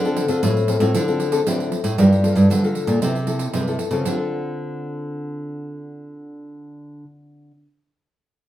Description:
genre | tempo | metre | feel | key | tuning
samba and choro | 116 BPM | 4/4 | straight | D minor | A4 = 439 Hz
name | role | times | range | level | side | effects
nylon-string guitar | accompaniment | 0.0-7.7 s | G2 to A4 | -23 LUFS | left 4 dB | none
nylon-string guitar | bass | 0.0-7.0 s | G2 to D3 | -21 LUFS | right 1 dB | none
pandeiro | percussion | 0.0-4.2 s | none | -26 LUFS | right 4 dB | none
room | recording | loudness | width
wet studio reverb, RT60 0.8 s | band playing live in one room | -18 LUFS | side -13 dB against mid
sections
0.0-4.1 A section; 4.1-8.2 B section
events
none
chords
0.0 Dm7; 2.0 Gm9; 3.0 C6; 4.1 Dm7

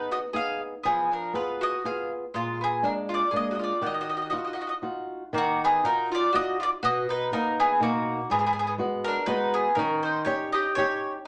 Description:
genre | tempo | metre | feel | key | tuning
italian folk, Italian serenade | 121 BPM | 3/4 | swing 55% on 8ths | Eb harmonic minor | A4 = 439 Hz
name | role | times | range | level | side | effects
mandolin | melody | 0.0-11.1 s | F4 to F5 | -29 LUFS | equal | none
bowl-back mandolin | second line | 0.0-11.1 s | Ab3 to Ab4 | -33 LUFS | equal | none
flamenco guitar | accompaniment | 0.0-11.2 s | Ab2 to Ab4 | -33 LUFS | equal | none
room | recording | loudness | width
wet club reverb, RT60 0.7 s | none | -27 LUFS | mono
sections
0.0-5.3 A section; 5.3-11.3 A section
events
none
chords
0.0 Abm; 0.8 Fdim; 2.3 Bb7; 3.8 Ebmadd9; 6.8 Bmaj7; 8.3 Abm7; 9.8 Eb7

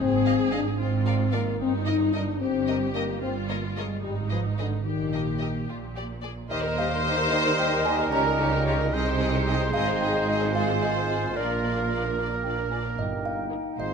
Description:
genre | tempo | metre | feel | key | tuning
cinematic, playful, whimsical film cue | 74 BPM (dotted quarters) | 6/8 | straight | Eb major | A4 = 441 Hz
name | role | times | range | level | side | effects
rich studio viola section | accompaniment | 0.0-13.7 s | Ab3 to C5 | -35 LUFS | left 1 dB | none
dark French horn section | sustained chords | 0.0-13.9 s | D3 to F4 | -29 LUFS | left 6 dB | none
warm chamber double bass section | bass | 0.0-13.9 s | G1 to Eb2 | -31 LUFS | right 4 dB | none
warm studio cello section | bass | 0.0-13.9 s | G2 to Eb3 | -33 LUFS | right 4 dB | none
rich chamber violin section | melody | 0.2-13.7 s | Ab4 to F5 | -36 LUFS | left 2 dB | none
rich studio violin section | second line | 0.3-13.9 s | F4 to Eb5 | -32 LUFS | left 2 dB | none
music box | melody | 6.5-13.9 s | D5 to Bb5 | -32 LUFS | right 3 dB | none
clear oboe | second line | 6.5-13.9 s | Bb4 to C5 | -32 LUFS | right 2 dB | none
mellow hollow small flute group | second line | 6.5-13.9 s | Eb5 to Ab5 | -34 LUFS | equal | none
warm clarinet | second line | 6.5-13.9 s | Eb4 to F4 | -36 LUFS | left 3 dB | none
warm bassoon | accompaniment | 6.5-13.9 s | G3 to Bb3 | -33 LUFS | right 2 dB | none
mellow tuba | bass | 6.5-13.9 s | G1 to Eb2 | -33 LUFS | right 5 dB | none
room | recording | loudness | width
moderate scoring stage reverb, RT60 1.6 s | none | -23 LUFS | side -6 dB against mid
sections
0.0-6.5 A section; 6.5-13.9 B section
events
none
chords
0.0 Fm7/Ab; 0.8 Bb7(no3)/Ab; 1.6 Eb/G; 3.2 Eb/G (rootless); 4.0 Ab5; 4.9 Eb/Bb; 5.7 N.C.; 6.5 Eb; 8.1 Eb7/Db; 8.9 Ab/C; 9.7 Ab; 10.5 Fm/Ab; 11.4 Bb; 13.0 Eb/G

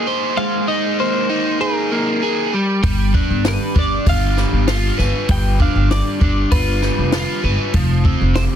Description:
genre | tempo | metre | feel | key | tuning
indie rock | 98 BPM | 4/4 | straight | unclear | A4 = 440 Hz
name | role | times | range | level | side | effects
twelve-string electric guitar | melody | 0.0-8.4 s | Bb4 to G5 | -24 LUFS | equal | phaser, digital delay
overdriven electric guitar | riff | 0.0-8.6 s | F3 to C5 | -19 LUFS | equal | none
upright bass | bass | 2.8-8.5 s | F1 to G1 | -18 LUFS | equal | none
compact cocktail drum kit | drums | 2.8-8.5 s | hi-hat, kick drum, snare drum | -19 LUFS | equal | none
room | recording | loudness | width
little or no reverb | dense, heavily limited modern master | -15 LUFS | side -9 dB against mid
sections
0.0-8.6 A section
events
none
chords
0.0 Abadd9; 2.5 G7; 7.7 Fsus2

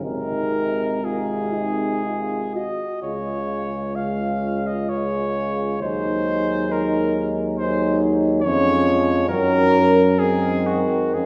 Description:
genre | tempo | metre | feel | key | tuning
classical, hymn-like piece for brass band | 58-72 BPM | 3/4 | rubato | unclear | A4 = 440 Hz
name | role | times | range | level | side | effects
clear flugelhorn | melody | 0.0-11.3 s | Gb4 to F5 | -26 LUFS | equal | none
mellow French horn section | second line | 0.0-11.3 s | C4 to Gb4 | -27 LUFS | equal | none
clear euphonium | accompaniment | 0.0-11.3 s | Gb3 to Ab3 | -31 LUFS | equal | none
clear trombone | accompaniment | 0.0-11.3 s | C3 to Gb3 | -30 LUFS | equal | none
mellow tuba | bass | 0.0-11.3 s | Ab1 to Gb2 | -28 LUFS | equal | none
room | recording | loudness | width
wet recital hall reverb, RT60 1.8 s | recorded in a church or concert hall | -21 LUFS | mono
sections
0.0-11.3 A section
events
none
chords
0.0 Ab; 3.0 Db; 5.8 Ab7/Eb; 8.4 Db/F; 9.3 Ebm7/Gb; 10.2 Ab7/Gb

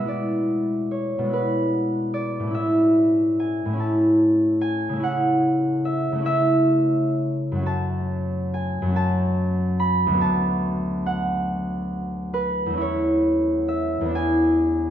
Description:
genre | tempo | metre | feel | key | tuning
classical, solo harp piece | 41-50 BPM (dotted quarters) | 6/8 | rubato | A major | A4 = 436 Hz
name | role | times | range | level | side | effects
concert harp | solo | 0.0-14.9 s | D2 to B5 | -20 LUFS | equal | none
room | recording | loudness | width
wet recital hall reverb, RT60 1.6 s | none | -20 LUFS | side -10 dB against mid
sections
0.0-14.9 A section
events
none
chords
0.1 E7/B; 2.6 A; 5.1 A/C#; 7.7 F#m; 10.2 Bm7/D; 12.8 A/E; 14.1 E7

